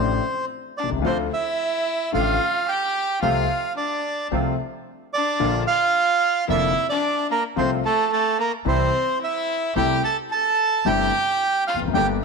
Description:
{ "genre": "tango", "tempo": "110 BPM", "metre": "4/4", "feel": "rubato", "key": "unclear", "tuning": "A4 = 439 Hz", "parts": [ { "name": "bandoneon", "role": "melody", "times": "0.0-12.1 s", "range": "A4 to A5", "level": "-22 LUFS", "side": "right 6 dB", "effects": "none" }, { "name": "bright violin", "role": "second line", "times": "0.0-12.1 s", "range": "A3 to A4", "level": "-27 LUFS", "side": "left 8 dB", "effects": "none" }, { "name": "warm grand piano", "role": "accompaniment", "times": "0.0-12.2 s", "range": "F1 to G4", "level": "-25 LUFS", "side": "left 11 dB", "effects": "none" }, { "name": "upright bass", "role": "bass", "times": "0.0-12.2 s", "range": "E1 to D2", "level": "-28 LUFS", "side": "right 3 dB", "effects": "none" }, { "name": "bandoneon", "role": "stabs", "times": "1.0-12.2 s", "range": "G3 to G4", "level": "-31 LUFS", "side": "right 11 dB", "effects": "none" } ], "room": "moderate echo chamber reverb, RT60 1.7 s, studio ambience", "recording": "1960s-style stereo with parts hard left and right", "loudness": "-20 LUFS", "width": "side -4 dB against mid", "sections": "0.0-12.2 A section", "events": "none", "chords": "0.0 Dm7; 1.0 Dm; 3.2 F/C; 5.4 Bb; 7.6 F/C; 8.7 C; 9.8 C6", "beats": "0.49 | 1.04 1.59 2.13 2.68 | 3.23 3.77 4.31 4.86 | 5.40 5.94 6.49 7.03 | 7.57 8.12 8.66 9.21 | 9.76 10.31 10.86 11.41 | 11.95" }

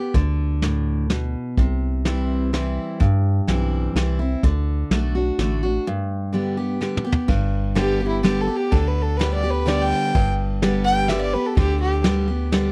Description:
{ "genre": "honky-tonk and classic country", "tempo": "126 BPM", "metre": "3/4", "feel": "straight", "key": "G major", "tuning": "A4 = 440 Hz", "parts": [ { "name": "picked steel-string acoustic guitar", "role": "accompaniment", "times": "0.0-12.7 s", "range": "G2 to G4", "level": "-25 LUFS", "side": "equal", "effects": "none" }, { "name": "rubbery square bass", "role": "bass", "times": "0.1-12.7 s", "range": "G1 to G2", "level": "-25 LUFS", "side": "equal", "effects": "none" }, { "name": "vintage brush drum kit", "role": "drums", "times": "0.1-12.6 s", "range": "hi-hat, kick drum, ride cymbal, snare drum, toms", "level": "-24 LUFS", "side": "equal", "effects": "none" }, { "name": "dark fiddle", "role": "second line", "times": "7.8-12.0 s", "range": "E4 to G5", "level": "-26 LUFS", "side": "equal", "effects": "none" } ], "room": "little or no reverb", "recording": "dry, close 1970s-style studio recording", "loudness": "-21 LUFS", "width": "mono", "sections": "0.0-7.3 A section; 7.3-12.7 B section", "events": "break 5.9-7.3; drum fill 6.8-7.3; fiddle solo 7.3-12.7", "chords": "0.0 G (rootless); 1.6 C; 4.4 D; 5.9 G", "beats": "| 0.14 0.62 1.10 | 1.57 2.05 2.53 | 3.00 3.48 3.96 | 4.43 4.91 5.39 | 5.86 6.34 6.82 | 7.29 7.77 8.24 | 8.72 9.20 9.67 | 10.15 10.63 11.10 | 11.58 12.05 12.53" }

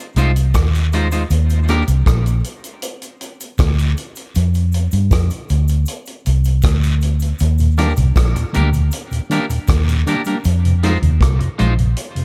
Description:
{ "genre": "dub reggae", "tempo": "79 BPM", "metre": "4/4", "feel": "straight", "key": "Eb major", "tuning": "A4 = 440 Hz", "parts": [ { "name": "electric guitar at the edge of break-up", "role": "accompaniment", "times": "0.0-1.8, 7.8-11.7 s", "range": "Ab3 to C5", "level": "-25 LUFS", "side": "equal", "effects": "tape echo" }, { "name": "vintage muted fingered electric bass", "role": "bass", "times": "0.2-11.9 s", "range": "Bb1 to G2", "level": "-17 LUFS", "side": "equal", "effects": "none" }, { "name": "vintage drum kit", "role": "drums", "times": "0.2-12.2 s", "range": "hi-hat, kick drum, rim click", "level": "-23 LUFS", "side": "equal", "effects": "none" }, { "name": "cabasa and guiro", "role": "percussion", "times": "0.2-10.6 s", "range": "none", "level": "-37 LUFS", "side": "equal", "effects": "tape echo" }, { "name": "mellow tonewheel organ", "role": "accompaniment", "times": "7.6-12.2 s", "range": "Eb2 to Eb4", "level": "-24 LUFS", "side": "equal", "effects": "slow rotary speaker" } ], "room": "small room ambience", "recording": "none", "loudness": "-17 LUFS", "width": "mono", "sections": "0.0-12.2 A section", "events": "break 0.0-7.4; part muted 10.4-12.2", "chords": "0.0 Fm7; 1.3 Ebmaj7(no3); 4.3 F5; 7.4 Ebmaj7; 10.4 Fm7", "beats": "0.54 | 1.30 2.06 2.82 3.59 | 4.35 5.11 5.87 6.63 | 7.40 8.16 8.92 9.68 | 10.44 11.21 11.97" }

